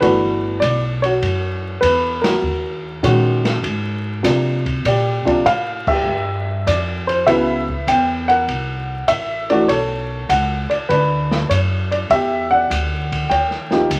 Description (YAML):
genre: jazz piano trio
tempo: 99 BPM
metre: 4/4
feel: swing 69% on 8ths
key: unclear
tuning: A4 = 444 Hz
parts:
  - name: dark baby grand piano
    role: melody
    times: 0.0-14.0 s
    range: B#2 to G5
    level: -20 LUFS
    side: equal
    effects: none
  - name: upright bass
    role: bass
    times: 0.0-14.0 s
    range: G1 to B#2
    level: -25 LUFS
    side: equal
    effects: none
  - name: open jazz drum kit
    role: drums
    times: 0.0-14.0 s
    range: crash cymbal, hi-hat, kick drum, ride cymbal, snare drum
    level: -28 LUFS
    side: equal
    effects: none
room: moderate large studio reverb, RT60 1.3 s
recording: vinyl crackle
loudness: -18 LUFS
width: mono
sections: 0.0-14.0 A section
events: band accent 2.1-2.4, 5.8-6.1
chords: 0.0 Gmaj9; 2.4 Ebm7; 3.6 G#add9; 4.9 Bb6; 7.3 C#m7b5; 8.5 C9; 9.7 Bm9; 12.1 Em9; 13.3 Eb9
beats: | 0.02 0.62 1.23 1.83 | 2.44 3.04 3.64 4.25 | 4.85 5.46 6.06 6.67 | 7.27 7.88 8.48 9.09 | 9.69 10.30 10.90 11.50 | 12.11 12.71 13.31 13.91